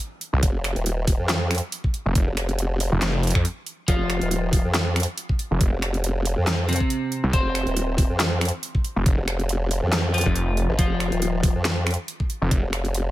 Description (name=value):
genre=heavy wobble dubstep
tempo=139 BPM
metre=4/4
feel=swing 55% on 16ths, half-time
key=unclear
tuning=A4 = 441 Hz
part: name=dubstep drum kit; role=drums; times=0.0-13.0 s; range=finger snaps, handclaps, hi-hat, snare drum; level=-26 LUFS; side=right 1 dB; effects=overdrive
part: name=snarling distorted saw bass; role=bass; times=0.3-12.6 s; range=F1 to F2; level=-22 LUFS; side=equal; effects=overdrive
part: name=formant-sweep wobble bass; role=bass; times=0.4-13.1 s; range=Eb1 to F2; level=-24 LUFS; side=equal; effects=chorus, overdrive
part: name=electronic kick drum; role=drums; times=0.4-12.6 s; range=none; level=-22 LUFS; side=equal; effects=overdrive
part: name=electric guitar at the edge of break-up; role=melody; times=3.9-11.6 s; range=C3 to C5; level=-27 LUFS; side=left 2 dB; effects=lush chorus, dub echo
room=digital ambience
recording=none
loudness=-20 LUFS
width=side -15 dB against mid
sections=0.0-13.1 A section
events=break 3.4-3.9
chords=0.0 F5